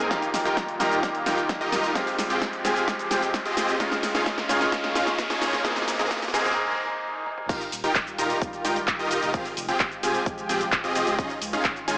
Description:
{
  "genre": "EDM, festival progressive house",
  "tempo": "130 BPM",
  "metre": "4/4",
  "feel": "straight",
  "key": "unclear",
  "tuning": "A4 = 442 Hz",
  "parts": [
    { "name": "bright grand piano", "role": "accompaniment", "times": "0.0-7.5 s", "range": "Ab2 to Ab4", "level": "-28 LUFS", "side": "equal", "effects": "sidechain pumping, digital delay" },
    { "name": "lush unison pad", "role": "sustained chords", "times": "0.0-12.0 s", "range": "C3 to Ab4", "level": "-33 LUFS", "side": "equal", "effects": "chorus, sidechain pumping" },
    { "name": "supersaw chords", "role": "riff", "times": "0.0-12.0 s", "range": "C4 to Bb5", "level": "-26 LUFS", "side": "equal", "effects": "sidechain pumping, low-pass filter, digital delay" },
    { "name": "saturated sub bass", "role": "bass", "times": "0.0-12.0 s", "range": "Eb1 to Db2", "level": "-42 LUFS", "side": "equal", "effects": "sidechain pumping, high-pass filter" },
    { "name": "big-room dance drum kit", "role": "drums", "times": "0.0-12.0 s", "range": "crash cymbal, handclaps, hi-hat, shaker, snare drum, toms", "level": "-29 LUFS", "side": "equal", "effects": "none" },
    { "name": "riser and swell", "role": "sound effects", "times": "0.2-7.5 s", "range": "none", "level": "-33 LUFS", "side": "equal", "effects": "none" },
    { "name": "electronic kick drum", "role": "drums", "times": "0.1-11.7 s", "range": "none", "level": "-30 LUFS", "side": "equal", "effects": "high-pass filter on kick" }
  ],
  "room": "moderate lush hall reverb, RT60 1.7 s",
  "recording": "high-pass filter, small speaker sound",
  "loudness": "-22 LUFS",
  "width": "side -25 dB against mid",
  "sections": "0.0-7.5 A section; 7.5-12.0 B section",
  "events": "build-up 0.0-7.5; drum fill 0.0-6.6, 7.3; break 6.6-7.5; swell 6.6-7.5; drop 7.5-12.0",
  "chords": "0.1 Ebadd9; 2.0 Fmadd9; 3.8 Dbadd9; 5.6 Abadd9; 7.5 Ebadd9; 9.3 Fmadd9; 11.2 Dbadd9"
}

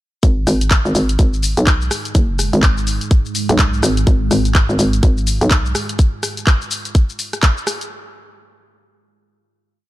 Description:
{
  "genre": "bass house",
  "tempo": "125 BPM",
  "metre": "4/4",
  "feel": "swing 60% on 16ths",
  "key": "G# dorian",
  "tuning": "A4 = 437 Hz",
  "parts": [
    { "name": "deep dark ambient pad", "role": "sustained chords", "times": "1.6-6.0 s", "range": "G#3 to E#5", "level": "-25 LUFS", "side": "right 2 dB", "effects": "chorus, built-in reverb, sidechain pumping" },
    { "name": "hollow knocking FM bass", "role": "bass", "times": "0.2-5.7 s", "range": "F#1 to B1", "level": "-16 LUFS", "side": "equal", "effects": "tube saturation, sidechain pumping" },
    { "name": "electronic kick drum", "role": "drums", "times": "0.2-7.5 s", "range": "none", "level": "-13 LUFS", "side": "equal", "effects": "none" },
    { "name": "garage drum kit", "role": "drums", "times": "0.2-7.9 s", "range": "handclaps, hi-hat, rim click, shaker", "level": "-20 LUFS", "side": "left 1 dB", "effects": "none" }
  ],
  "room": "digital ambience",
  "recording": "dark, warm production",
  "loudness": "-14 LUFS",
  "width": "side -16 dB against mid",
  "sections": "0.2-7.9 drop",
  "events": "drop 0.2-7.9",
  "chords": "0.2 G#5"
}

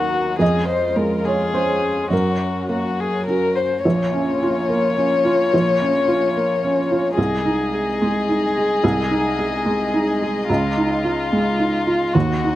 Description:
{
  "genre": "neoclassical piano and strings",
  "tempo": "108 BPM",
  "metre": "3/4",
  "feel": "rubato",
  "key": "unclear",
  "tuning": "A4 = 440 Hz",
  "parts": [
    { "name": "dark violin", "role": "melody", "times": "0.0-12.6 s", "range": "F4 to Db5", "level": "-21 LUFS", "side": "left 4 dB", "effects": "none" },
    { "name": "felt-muted upright piano", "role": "accompaniment", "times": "0.0-12.6 s", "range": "Bb1 to Ab5", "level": "-20 LUFS", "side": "right 2 dB", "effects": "none" },
    { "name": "warm chamber string section", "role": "sustained chords", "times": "0.0-12.6 s", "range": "Gb3 to Eb5", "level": "-27 LUFS", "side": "equal", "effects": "none" }
  ],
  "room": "little or no reverb",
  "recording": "recorded outdoors, with no room sound, faint mains hum",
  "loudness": "-17 LUFS",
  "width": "side -14 dB against mid",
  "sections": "0.0-3.8 A section; 3.8-12.6 B section",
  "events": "none",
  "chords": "0.4 Db/F; 2.1 Gb; 3.8 Bbm; 7.2 Ab/C; 10.5 Dbadd9"
}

